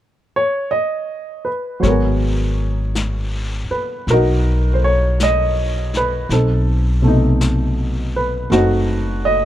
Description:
jazz ballad; 54 BPM; 4/4; swing 67% on 8ths; G# minor; A4 = 440 Hz
warm baby grand piano; accompaniment; 0.4-9.4 s; B2 to D#5; -18 LUFS; right 1 dB
upright bass; bass; 1.8-9.4 s; F#1 to B1; -18 LUFS; equal
jazz brush drum kit; drums; 1.8-9.4 s; brushed snare drum, hi-hat, snare drum; -29 LUFS; left 3 dB
little or no reverb; dark, warm production; -15 LUFS; side -12 dB against mid
0.0-1.8 A section; 1.8-9.4 B section
0.0 N.C.; 1.8 G#m9; 6.3 B7b9
0.71 | 1.82 2.94 4.06 5.18 | 6.29 7.39 8.50

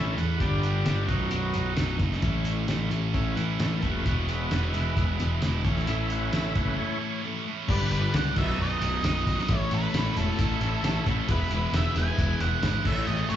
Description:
classic rock; 132 BPM; 4/4; straight; A4 = 440 Hz
overdriven tonewheel organ; sustained chords; 0.0-13.4 s; F#3 to E5; -35 LUFS; equal; slow rotary speaker
distorted electric guitar; riff; 0.0-13.4 s; B1 to A4; -33 LUFS; right 12 dB; overdrive, slapback echo
sludgy distorted guitar; riff; 0.0-13.4 s; B1 to A3; -33 LUFS; left 8 dB; overdrive
fuzz picked electric bass; bass; 0.0-13.4 s; B0 to E2; -28 LUFS; equal; overdrive
cloth-damped thuddy drum kit; drums; 0.2-13.4 s; crash cymbal, hi-hat, kick drum, snare drum, tambourine; -30 LUFS; equal
octave-fuzz lead guitar; melody; 7.7-13.4 s; A4 to G#5; -32 LUFS; right 1 dB; distortion, slapback echo
dark upright piano; accompaniment; 7.7-13.4 s; D4 to E5; -39 LUFS; equal; slapback echo
light reverb; live gig heard through the venue's PA, club reverb, nothing above 7.6 kHz; -24 LUFS; side -10 dB against mid
0.0-7.7 A section; 7.7-13.4 B section
tonewheel organ solo 0.0-7.7; break 6.8-7.7
0.4 G; 1.1 B; 2.2 A; 4.1 E; 5.6 A; 7.7 G; 8.4 B; 9.5 A; 11.3 E; 12.9 A
| 0.41 0.86 1.32 1.78 | 2.23 2.69 3.14 3.60 | 4.05 4.51 4.96 5.42 | 5.87 6.33 6.78 7.24 | 7.69 8.14 8.59 9.04 | 9.49 9.94 10.39 10.84 | 11.29 11.74 12.19 12.63 | 13.08

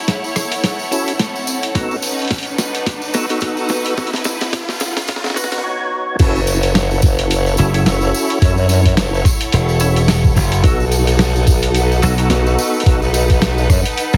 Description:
glitch hop; 108 BPM; 4/4; swing 57% on 16ths; F# dorian; A4 = 440 Hz
riser; sound effects; 0.0-5.6 s; -30 LUFS; equal
clear studio string section; texture; 0.0-14.2 s; D#4 to F#5; -26 LUFS; equal; sidechain pumping
boom bap sampler-style drum kit; drums; 0.1-14.1 s; crash cymbal, hi-hat, rim click, snare drum; -23 LUFS; equal
tambourine; percussion; 0.1-14.2 s; -29 LUFS; equal
percussive tonewheel organ; stabs; 0.9-13.0 s; B3 to C#5; -25 LUFS; equal; overdrive, chorus vibrato, slow rotary speaker, sidechain pumping, low-pass filter, dub echo
electronic kick drum; drums; 1.7-13.8 s; -17 LUFS; equal
formant-sweep wobble bass; bass; 6.2-13.8 s; F#1 to F#2; -18 LUFS; equal; chorus
glassy slap bass; bass; 7.6-14.2 s; E1 to B1; -16 LUFS; equal; tube saturation
light reverb; heavily compressed radio sound, multiband compression, high-pass filter; -16 LUFS; mono
0.0-6.2 A section; 6.2-14.2 B section
build-up 0.0-6.2; drum fill 0.0-5.6; riser 0.0-5.6; drop 6.2-14.2
0.0 F#m7; 1.8 B7; 6.2 F#m7; 10.6 B7
0.09 0.64 1.20 | 1.75 2.31 2.86 3.42 | 3.97 4.53 5.08 5.64 | 6.20 6.75 7.31 7.86 | 8.42 8.97 9.53 10.09 | 10.64 11.20 11.75 12.31 | 12.86 13.42 13.97

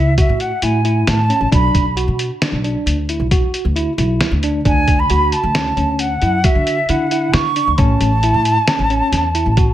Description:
progressive instrumental, band music in an uneven meter; 134 BPM; 7/4; straight; A major; A4 = 440 Hz
concert flute; melody; 0.0-9.7 s; E5 to C#6; -18 LUFS; right 1 dB; digital delay
bell-like tine electric piano; arpeggios; 0.0-9.7 s; C#4 to F#4; -21 LUFS; right 1 dB; fast stereo tremolo
upright bass; bass; 0.0-9.7 s; A1 to D3; -18 LUFS; equal
trip hop sampler-style drum kit; drums; 0.2-9.7 s; hi-hat, kick drum, snare drum; -18 LUFS; equal
light reverb; -13 LUFS; side -12 dB against mid
0.0-9.7 A section
0.0 Amaj7; 1.5 Bmadd11; 4.7 Dmaj7; 7.8 A
0.18 0.63 1.07 | 1.52 1.97 2.42 2.86 3.31 3.76 4.21 | 4.65 5.10 5.55 5.99 6.44 6.89 7.33 | 7.78 8.23 8.68 9.12 9.57

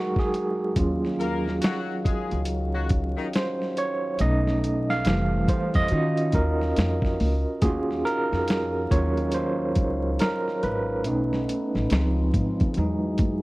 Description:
R&B, neo-soul; 70 BPM; 4/4; swing 62% on 16ths; A4 = 440 Hz
overdriven tine electric piano; accompaniment; 0.0-13.4 s; E3 to F5; -25 LUFS; right 2 dB; fast tremolo
dusty soul sampler-style drum kit; drums; 0.2-13.4 s; hi-hat, kick drum, snare drum; -26 LUFS; equal
dark French horn section; sustained chords; 0.8-13.4 s; Db3 to F5; -34 LUFS; left 3 dB
upright bass; bass; 0.8-13.4 s; F1 to Eb3; -26 LUFS; equal
warm horn section; stabs; 1.2-3.3 s; Eb3 to Bb4; -32 LUFS; left 5 dB
small room reverb; dry, close 1970s-style studio recording, vinyl crackle; -22 LUFS; side -20 dB against mid
0.0-7.6 A section; 7.6-13.4 B section
tine electric piano solo 0.0-7.6, 7.6-13.4
0.0 Emaj9 (rootless); 0.8 Ebm9; 4.2 B7; 5.0 Fmaj9; 5.9 Ebm9; 11.0 B7; 11.9 Dbmaj7; 12.8 Emaj9
| 0.76 1.62 2.48 3.33 | 4.19 5.05 5.91 6.76 | 7.62 8.48 9.34 10.19 | 11.05 11.91 12.76

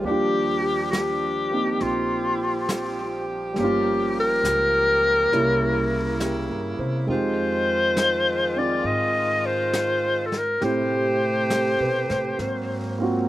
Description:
jazz ballad; 68 BPM; 4/4; swing 69% on 8ths; Eb major; A4 = 440 Hz
warm grand piano; accompaniment; 0.0-13.3 s; G3 to C5; -27 LUFS; right 2 dB
clear saxophone section; sustained chords; 0.0-13.3 s; C3 to G4; -28 LUFS; right 1 dB; stereo widening
upright bass; bass; 0.0-13.3 s; G1 to C3; -32 LUFS; equal
vintage brush drum kit; drums; 0.0-13.3 s; brushed snare drum, hi-hat, snare drum; -33 LUFS; equal
bright clarinet; melody; 0.1-13.2 s; F4 to Eb5; -22 LUFS; left 1 dB
little or no reverb; recorded outdoors, with no room sound; -20 LUFS; side -14 dB against mid
0.0-13.3 A section
0.0 Ebmaj9; 3.6 Gm7b5; 5.3 C7b9; 7.1 Fm7; 10.6 Am9; 12.4 Ab13
| 0.04 0.93 1.81 2.69 | 3.57 4.45 5.33 6.21 | 7.09 7.97 8.85 9.73 | 10.61 11.50 12.38 13.27

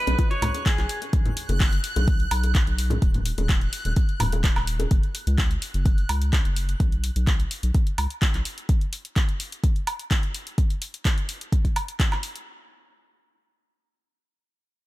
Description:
progressive house; 127 BPM; 4/4; straight; A4 = 440 Hz
clean electric guitar; melody; 0.0-1.0 s; G#4 to C#5; -30 LUFS; right 1 dB; sidechain pumping, tape echo
downlifter; sound effects; 0.0-1.1 s; -48 LUFS; right 1 dB
backwards swelling texture; texture; 0.0-4.9 s; F#6; -36 LUFS; right 2 dB; built-in reverb, sidechain pumping
tight sequenced synth; arpeggios; 0.1-1.1 s; C#4 to F#5; -34 LUFS; equal; chorus, phaser, sidechain pumping, tape echo
round analog bass; bass; 0.1-8.4 s; D#1 to C#2; -25 LUFS; equal; sidechain pumping
deep house drum kit; drums; 0.1-12.4 s; handclaps, hi-hat, woodblock; -30 LUFS; right 1 dB; sidechain pumping on hats, sidechain pumping on perc, sidechain pumping on cymbals
congas and bongos; percussion; 0.1-4.9 s; -31 LUFS; left 2 dB; sidechain pumping on perc
electronic kick drum; drums; 0.2-12.1 s; -21 LUFS; equal
little or no reverb; -21 LUFS; side -17 dB against mid
0.0-12.5 A section; 12.5-14.9 B section
filter sweep on analog synth bass 0.0-8.7; filter sweep on synth arpeggio sound 0.0-1.1
0.0 Bsus2; 1.1 F#sus4; 3.0 D#m; 4.9 F#5; 6.8 N.C.
0.19 0.66 | 1.13 1.60 2.08 2.55 | 3.02 3.49 3.96 4.44 | 4.91 5.38 5.86 6.33 | 6.80 7.27 7.75 8.22 | 8.69 9.16 9.63 10.11 | 10.58 11.05 11.52 12.00

